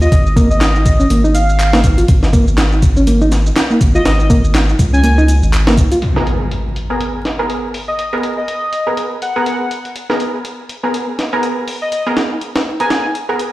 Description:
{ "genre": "breakbeat, breaks", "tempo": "122 BPM", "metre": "4/4", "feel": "swing 58% on 16ths", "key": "G# dorian", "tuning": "A4 = 440 Hz", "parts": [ { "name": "airy dreamy lead", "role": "melody", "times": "0.0-13.0 s", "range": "D#5 to G#5", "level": "-20 LUFS", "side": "left 1 dB", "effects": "chorus, small speaker sound, digital delay" }, { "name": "reed electric piano", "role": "riff", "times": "0.0-6.0 s", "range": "A#3 to E#4", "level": "-17 LUFS", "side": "equal", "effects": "fast tremolo, digital delay" }, { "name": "saturated sub bass", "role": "bass", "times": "0.0-5.8 s", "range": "G#1 to C#2", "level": "-13 LUFS", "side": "equal", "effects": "none" }, { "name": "electronic shaker and handclaps", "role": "drums", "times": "0.0-6.0 s", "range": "none", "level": "-25 LUFS", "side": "equal", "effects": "none" }, { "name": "breakbeat sampler-style drum kit", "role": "drums", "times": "0.1-13.5 s", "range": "hi-hat, kick drum, snare drum", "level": "-16 LUFS", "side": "equal", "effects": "low-pass filter on kick, low-pass filter on hats, low-pass filter on snare" }, { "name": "impact", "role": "sound effects", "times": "6.0-8.0 s", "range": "none", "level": "-20 LUFS", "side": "equal", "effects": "none" }, { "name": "orchestra-hit-like synth stab", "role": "stabs", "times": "6.2-13.4 s", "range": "B3 to A#4", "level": "-19 LUFS", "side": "right 1 dB", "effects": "built-in reverb, digital delay" } ], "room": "light reverb", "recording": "played on a big sound system in a bare room, stone room reverb, vinyl crackle", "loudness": "-12 LUFS", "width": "side -17 dB against mid", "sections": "0.0-6.0 A section; 6.0-13.5 B section", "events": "impact 6.0-8.0", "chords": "0.0 A#m/G#; 6.0 G#madd9", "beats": "| 0.12 0.61 1.10 1.59 | 2.09 2.58 3.07 3.56 | 4.05 4.55 5.04 5.53 | 6.02 6.51 7.00 7.50 | 7.99 8.48 8.97 9.46 | 9.96 10.45 10.94 11.43 | 11.92 12.41 12.91 13.40" }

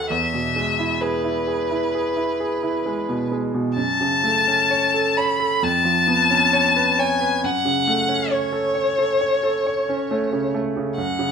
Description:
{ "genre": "classical, romantic duo for violin and grand piano", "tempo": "66 BPM", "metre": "4/4", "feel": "rubato", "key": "unclear", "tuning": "A4 = 440 Hz", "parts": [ { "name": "rich violin", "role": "melody", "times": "0.0-11.3 s", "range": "B4 to B5", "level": "-20 LUFS", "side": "left 2 dB", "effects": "none" }, { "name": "bright concert grand piano", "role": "accompaniment", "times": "0.0-11.3 s", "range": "D#2 to F#5", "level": "-22 LUFS", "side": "right 2 dB", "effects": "none" } ], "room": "moderate stone room reverb, RT60 1.2 s", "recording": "none", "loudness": "-18 LUFS", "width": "side -6 dB against mid", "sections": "0.0-11.3 A section", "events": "none", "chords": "0.1 E; 3.8 F#m; 5.6 C#7/E#; 7.4 F#m", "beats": "| 0.09 1.01 1.93 2.85 | 3.77 4.70 5.62 6.53 | 7.43 8.31 9.20 10.10 | 10.97" }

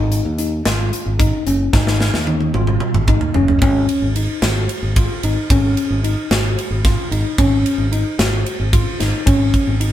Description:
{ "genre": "progressive instrumental, band music in an uneven meter", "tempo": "223 BPM (eighths)", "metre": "7/8", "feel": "straight", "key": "unclear", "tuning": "A4 = 440 Hz", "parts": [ { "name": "tine electric piano", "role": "arpeggios", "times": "0.0-9.9 s", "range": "C#4 to F#4", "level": "-20 LUFS", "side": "left 1 dB", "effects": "medium stereo tremolo" }, { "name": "fingered electric bass", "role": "bass", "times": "0.0-9.9 s", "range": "F#1 to D#2", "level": "-19 LUFS", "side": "equal", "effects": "none" }, { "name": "tight metal drum kit", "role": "drums", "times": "0.1-9.9 s", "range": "hi-hat, kick drum, ride cymbal, snare drum, toms", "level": "-18 LUFS", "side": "right 1 dB", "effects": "none" } ], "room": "light reverb", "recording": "band playing live in one room", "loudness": "-14 LUFS", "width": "side -12 dB against mid", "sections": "0.0-3.6 A section; 3.6-9.9 B section", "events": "drum fill 1.7-3.6", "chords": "0.0 G#5", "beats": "0.12 0.39 0.66 0.93 1.20 1.47 | 1.73 2.00 2.27 2.54 2.81 3.08 3.35 | 3.62 3.89 4.16 4.43 4.70 4.96 5.23 | 5.50 5.77 6.04 6.31 6.58 6.85 7.12 | 7.39 7.66 7.92 8.19 8.46 8.73 9.00 | 9.27 9.54 9.81" }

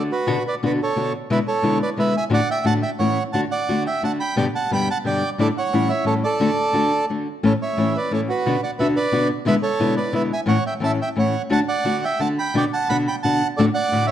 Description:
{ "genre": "tango", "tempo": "177 BPM", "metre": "3/4", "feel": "rubato", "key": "D major", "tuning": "A4 = 440 Hz", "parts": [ { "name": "bandoneon", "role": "melody", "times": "0.0-14.1 s", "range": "F#4 to B5", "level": "-22 LUFS", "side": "right 3 dB", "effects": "none" }, { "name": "nylon-string guitar", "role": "accompaniment", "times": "0.0-14.1 s", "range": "G2 to G4", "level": "-21 LUFS", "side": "left 2 dB", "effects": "none" } ], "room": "moderate scoring stage reverb, RT60 1.9 s", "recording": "dark, warm production", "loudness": "-18 LUFS", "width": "side -10 dB against mid", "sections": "0.0-14.1 A section", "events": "none", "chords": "0.3 Bm; 1.3 E7/B; 2.3 D/A; 3.0 A; 3.3 D; 4.4 G; 5.4 A7sus4; 5.7 A7; 6.4 D; 7.4 A; 8.5 Bm; 9.5 E7; 10.5 A; 11.5 D; 12.6 Bm; 13.6 D/A", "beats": "| 0.28 0.62 0.96 | 1.29 1.63 1.97 | 2.31 2.65 2.99 | 3.34 3.69 4.03 | 4.38 4.72 5.05 | 5.39 5.73 6.07 | 6.40 6.74 7.09 | 7.43 7.78 8.12 | 8.46 8.80 9.14 | 9.47 9.81 10.15 | 10.49 10.82 11.17 | 11.52 11.87 12.21 | 12.55 12.90 13.24 | 13.58 13.92" }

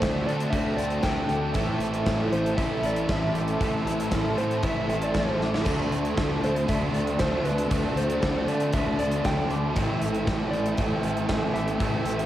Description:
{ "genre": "rock, shoegaze and dream pop", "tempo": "117 BPM", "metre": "4/4", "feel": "straight", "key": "D mixolydian", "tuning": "A4 = 438 Hz", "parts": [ { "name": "soft struck synth lead", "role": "melody", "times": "0.0-11.8 s", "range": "B4 to G5", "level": "-31 LUFS", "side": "equal", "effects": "chorus, tremolo, cassette tape, tape echo" }, { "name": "hollow soft pad", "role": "sustained chords", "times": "0.0-12.3 s", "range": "A4 to A5", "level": "-33 LUFS", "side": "right 1 dB", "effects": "chorus, cassette tape" }, { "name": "electric guitar through a small old amp", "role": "arpeggios", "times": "0.0-12.3 s", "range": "E3 to G4", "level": "-36 LUFS", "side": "equal", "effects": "none" }, { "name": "biting overdriven guitar", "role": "riff", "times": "0.0-12.3 s", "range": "A2 to F#4", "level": "-31 LUFS", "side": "right 7 dB", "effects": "reverse reverb, cassette tape" }, { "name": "thick fuzz guitar", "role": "riff", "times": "0.0-12.3 s", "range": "A2 to D4", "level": "-30 LUFS", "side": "left 5 dB", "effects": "distortion, ensemble chorus, cassette tape" }, { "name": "fuzz fingered electric bass", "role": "bass", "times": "0.0-12.3 s", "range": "A1 to D3", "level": "-31 LUFS", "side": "equal", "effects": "overdrive, transformer saturation" }, { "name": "gated 80s drum kit", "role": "drums", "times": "0.0-12.3 s", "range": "hi-hat, kick drum, snare drum, splash cymbal", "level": "-29 LUFS", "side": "equal", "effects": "cassette tape" } ], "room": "light reverb, small room ambience", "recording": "home recording on cassette", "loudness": "-23 LUFS", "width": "side -12 dB against mid", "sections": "0.0-12.3 A section", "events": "drum fill 5.4", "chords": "0.0 D7sus4; 1.6 Am7; 5.7 D7(no3); 9.8 Am7", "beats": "0.01 0.52 1.04 | 1.55 2.06 2.58 3.09 | 3.60 4.12 4.63 5.14 | 5.66 6.17 6.68 7.20 | 7.71 8.22 8.74 9.25 | 9.76 10.27 10.78 11.30 | 11.81" }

